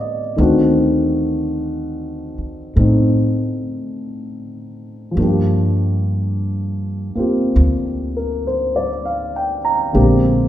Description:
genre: jazz ballad.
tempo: 50 BPM.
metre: 4/4.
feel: swing 66% on 8ths.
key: unclear.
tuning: A4 = 437 Hz.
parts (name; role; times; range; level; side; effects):
dark concert grand piano; accompaniment; 0.0-10.5 s; D3 to Bb5; -18 LUFS; equal; none.
upright bass; bass; 0.0-10.5 s; Bb1 to A2; -20 LUFS; equal; none.
room: wet recital hall reverb, RT60 1.6 s.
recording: recorded in a church or concert hall.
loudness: -15 LUFS.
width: side -12 dB against mid.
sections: 0.0-10.5 A section.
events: none.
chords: 0.4 D7b9; 5.2 Gm7; 10.0 Bb13.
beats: | 0.38 1.58 2.77 3.97 | 5.17 6.37 7.57 8.76 | 9.96.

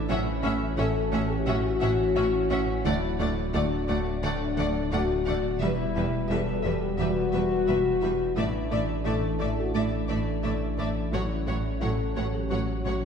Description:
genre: cinematic, hybrid orchestral and electronic film score.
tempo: 87 BPM.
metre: 4/4.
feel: straight.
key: unclear.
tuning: A4 = 440 Hz.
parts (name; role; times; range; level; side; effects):
dark French horn section; sustained chords; 0.0-13.0 s; D4 to A4; -29 LUFS; left 5 dB; none.
dark analog pad; sustained chords; 0.0-13.1 s; D3 to D5; -35 LUFS; equal; chorus, phaser.
mellow trombone section; sustained chords; 0.0-13.1 s; E3 to D4; -35 LUFS; right 3 dB; none.
saturated sub bass; bass; 0.0-13.1 s; D1 to A1; -33 LUFS; equal; none.
clear symphonic violin section; melody; 0.1-12.9 s; E5 to F#5; -39 LUFS; left 4 dB; none.
clear symphonic violin section; second line; 0.1-12.9 s; B4 to E5; -36 LUFS; left 3 dB; none.
rich symphonic viola section; accompaniment; 0.1-12.9 s; F#3 to C#4; -35 LUFS; right 1 dB; none.
soft round pluck; arpeggios; 0.1-13.1 s; D3 to A4; -39 LUFS; right 5 dB; none.
rich studio double bass section; bass; 0.1-12.9 s; E1 to D2; -34 LUFS; right 2 dB; none.
rich symphonic cello section; bass; 0.1-12.9 s; D2 to A2; -34 LUFS; right 2 dB; none.
room: wet scoring stage reverb, RT60 1.6 s.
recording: heard from further back in the room.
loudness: -24 LUFS.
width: side -7 dB against mid.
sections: 0.0-13.1 A section.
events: none.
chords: 0.1 F#m7/A; 2.9 D; 5.6 Emadd9; 8.4 Asus4; 11.1 F#m7/A.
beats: | 0.10 0.79 1.48 2.17 | 2.85 3.54 4.23 4.92 | 5.61 6.30 6.99 7.68 | 8.37 9.06 9.75 10.44 | 11.13 11.82 12.51.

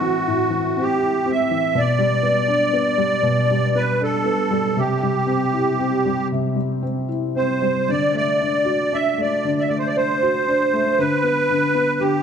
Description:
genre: celtic folk, Celtic slow air.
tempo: 59 BPM.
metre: 3/4.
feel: rubato.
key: D mixolydian.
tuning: A4 = 440 Hz.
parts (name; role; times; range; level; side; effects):
musette accordion; melody; 0.0-12.2 s; F#4 to E5; -19 LUFS; right 2 dB; none.
felt-muted upright piano; accompaniment; 0.0-12.2 s; A2 to F#4; -21 LUFS; left 2 dB; none.
room: moderate concert hall reverb, RT60 2.2 s.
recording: dark, warm production.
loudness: -17 LUFS.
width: side -7 dB against mid.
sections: 0.0-12.2 A section.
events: none.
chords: 0.0 Am; 1.8 G/B; 4.8 C; 7.9 D; 11.0 G (rootless).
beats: 0.80 | 1.78 2.76 3.76 | 4.78 5.80 6.84 | 7.90 8.94 9.98 | 11.00 12.00.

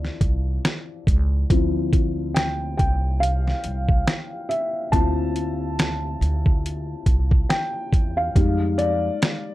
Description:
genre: lo-fi hip hop.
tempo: 70 BPM.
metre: 4/4.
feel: swing 58% on 16ths.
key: unclear.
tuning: A4 = 440 Hz.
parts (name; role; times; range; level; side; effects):
felt-muted upright piano; accompaniment; 0.0-9.5 s; F3 to A5; -25 LUFS; left 2 dB; low-pass filter.
upright bass; bass; 0.0-9.1 s; C2 to F2; -24 LUFS; equal; none.
dusty soul sampler-style drum kit; drums; 0.0-9.5 s; hi-hat, kick drum, snare drum; -21 LUFS; equal; none.
room: light reverb.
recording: none.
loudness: -20 LUFS.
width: side -16 dB against mid.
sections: 0.0-8.4 A section; 8.4-9.5 B section.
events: felt piano solo 0.0-8.4, 8.4-9.5.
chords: 0.0 Dm9; 8.4 Fm9.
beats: 0.64 | 1.50 2.36 3.21 4.07 | 4.93 5.79 6.64 7.50 | 8.36 9.21.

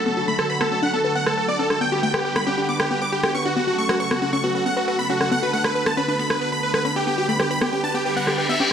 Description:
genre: uplifting trance.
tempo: 137 BPM.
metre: 4/4.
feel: straight.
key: B minor.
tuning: A4 = 441 Hz.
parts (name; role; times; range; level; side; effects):
big supersaw lead; melody; 0.0-8.7 s; F#4 to D6; -22 LUFS; right 1 dB; tape echo.
lush unison pad; sustained chords; 0.0-8.7 s; C#3 to B4; -27 LUFS; equal; chorus.
wide unison pluck; arpeggios; 0.1-8.6 s; A3 to B4; -27 LUFS; left 3 dB; tape echo.
electronic rim click; drums; 0.4-8.4 s; none; -26 LUFS; equal; none.
reverse cymbal; sound effects; 8.1-8.7 s; none; -23 LUFS; left 2 dB; none.
room: moderate lush hall reverb, RT60 2.1 s.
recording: none.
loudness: -19 LUFS.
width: side -8 dB against mid.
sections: 0.0-8.7 A section.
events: filter sweep on synth arpeggio sound 0.0-8.7; reverse cymbal 8.1-8.7.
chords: 0.1 D; 1.8 Gmaj7; 3.6 F#m; 5.3 Bm7.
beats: | 0.06 0.50 0.94 1.38 | 1.81 2.25 2.69 3.13 | 3.56 4.00 4.44 4.88 | 5.32 5.75 6.19 6.63 | 7.07 7.51 7.94 8.38.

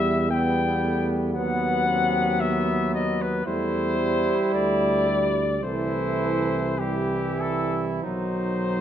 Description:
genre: classical, hymn-like piece for brass band.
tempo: 44-58 BPM.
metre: 4/4.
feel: rubato.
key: E minor.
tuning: A4 = 438 Hz.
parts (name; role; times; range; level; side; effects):
warm flugelhorn; melody; 0.0-8.8 s; G4 to G5; -26 LUFS; left 4 dB; none.
mellow flugelhorn; second line; 0.0-8.8 s; B3 to E4; -31 LUFS; right 8 dB; none.
mellow trombone; accompaniment; 0.0-8.8 s; D#3 to C4; -30 LUFS; right 5 dB; none.
warm euphonium; accompaniment; 0.0-8.8 s; E3 to G3; -28 LUFS; equal; none.
dark tuba; bass; 0.0-8.8 s; B1 to E2; -28 LUFS; equal; none.
room: wet recital hall reverb, RT60 1.6 s.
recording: none.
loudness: -22 LUFS.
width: side -10 dB against mid.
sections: 0.0-8.8 A section.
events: none.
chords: 0.0 Em; 1.4 B/D#; 3.5 Em; 5.6 C; 8.0 B.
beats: 0.32 1.36 2.41 | 3.47 4.54 5.64 6.79 | 8.05.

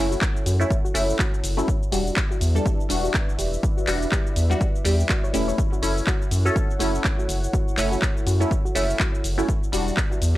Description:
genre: deep house.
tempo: 123 BPM.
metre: 4/4.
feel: swing 58% on 16ths.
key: F# phrygian.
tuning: A4 = 440 Hz.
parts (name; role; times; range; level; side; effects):
dark analog pad; sustained chords; 0.0-10.4 s; E4 to F#5; -32 LUFS; equal; chorus, phaser, sidechain pumping.
filtered dub chord stab; stabs; 0.0-10.4 s; G3 to A4; -27 LUFS; equal; phaser, sidechain pumping, analog delay.
round analog bass; bass; 0.0-10.4 s; E1 to F#2; -23 LUFS; equal; tube saturation.
soft round pluck; arpeggios; 0.1-10.2 s; F#4 to C#5; -34 LUFS; left 1 dB; chorus, sidechain pumping, analog delay.
house drum kit; drums; 0.1-10.3 s; handclaps, hi-hat, shaker; -28 LUFS; left 1 dB; studio reverb.
electronic kick drum; drums; 0.2-10.1 s; none; -24 LUFS; equal; studio reverb.
room: little or no reverb.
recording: dry, gritty hardware recording, cassette tape.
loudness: -20 LUFS.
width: side -16 dB against mid.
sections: 0.0-10.4 A section.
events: none.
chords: 0.0 F#m7; 1.7 Em7; 5.6 F#m7; 9.5 Em7.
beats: 0.22 0.70 1.19 | 1.68 2.17 2.66 3.14 | 3.63 4.12 4.61 5.09 | 5.58 6.07 6.56 7.05 | 7.53 8.02 8.51 9.00 | 9.49 9.97.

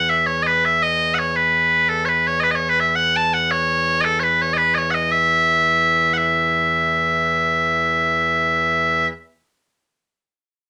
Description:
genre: celtic folk.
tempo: 112 BPM (dotted quarters).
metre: 6/8.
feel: straight.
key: unclear.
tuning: A4 = 438 Hz.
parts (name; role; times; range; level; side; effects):
loud bright bagpipes; solo; 0.0-9.1 s; E2 to A5; -18 LUFS; equal; none.
room: moderate studio ambience, RT60 0.5 s.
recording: none.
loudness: -18 LUFS.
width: mono.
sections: 0.0-6.2 A section; 6.2-8.3 B section.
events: none.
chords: none.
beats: 0.26 | 0.80 1.34 | 1.88 2.42 | 2.95 3.49 | 4.03 4.56 | 5.10 5.64 | 6.17 6.71 | 7.24 7.78.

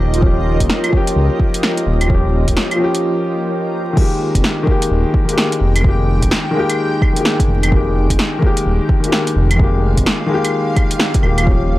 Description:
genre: future garage.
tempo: 128 BPM.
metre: 4/4.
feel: swing 62% on 16ths.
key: F minor.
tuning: A4 = 438 Hz.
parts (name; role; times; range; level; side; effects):
warm upright piano; accompaniment; 0.0-11.8 s; Eb3 to G4; -18 LUFS; left 2 dB; sidechain pumping, analog delay.
granular cloud pad; sustained chords; 0.0-11.8 s; F4 to G5; -24 LUFS; right 2 dB; built-in reverb, vintage 12-bit sampler grit, sidechain pumping.
dark detuned saw bass; bass; 0.0-11.8 s; Eb1 to Db2; -15 LUFS; equal; sidechain pumping.
deep house drum kit; drums; 0.1-11.5 s; claves, crash cymbal, hi-hat, snare drum; -19 LUFS; equal; overdrive.
electronic kick drum; drums; 0.2-11.6 s; none; -16 LUFS; equal; overdrive.
room: little or no reverb.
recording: dry, gritty hardware recording, transformer saturation, vinyl crackle.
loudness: -13 LUFS.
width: side -16 dB against mid.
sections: 0.0-4.0 A section; 4.0-11.8 B section.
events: break 3.0-4.0.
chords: 0.0 Eb9; 4.0 Fm11.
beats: | 0.22 0.69 1.16 1.63 | 2.10 2.57 3.04 3.50 | 3.97 4.44 4.91 5.38 | 5.85 6.32 6.79 7.25 | 7.72 8.19 8.66 9.13 | 9.60 10.07 10.54 11.00 | 11.47.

